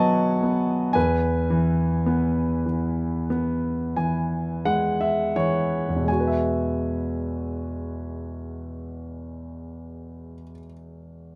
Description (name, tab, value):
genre	classical, lyrical solo piano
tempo	42-58 BPM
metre	4/4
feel	rubato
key	E major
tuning	A4 = 440 Hz
part	warm concert grand piano	solo	0.0-11.4 s	E2 to A5	-25 LUFS	equal	none
room	light reverb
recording	none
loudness	-24 LUFS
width	mono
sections	0.0-6.1 A section; 6.1-11.4 B section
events	slowing down 0.0-6.1; grand piano fill 3.3-6.1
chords	0.0 B; 1.0 E; 6.1 Eadd9